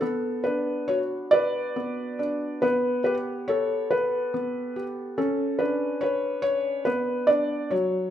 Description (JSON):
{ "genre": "children's music, lullaby", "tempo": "47 BPM (dotted quarters)", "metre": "6/8", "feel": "rubato", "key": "B minor", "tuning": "A4 = 440 Hz", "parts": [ { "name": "felt-muted upright piano", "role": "solo", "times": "0.0-8.1 s", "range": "F#3 to D5", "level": "-23 LUFS", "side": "equal", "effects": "none" } ], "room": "moderate recital hall reverb, RT60 1.3 s", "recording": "minimal, uncompressed stereo recording", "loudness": "-23 LUFS", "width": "side -10 dB against mid", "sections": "0.0-8.1 A section", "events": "none", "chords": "0.0 Bm; 2.6 Gadd9/B; 5.2 Bmadd9" }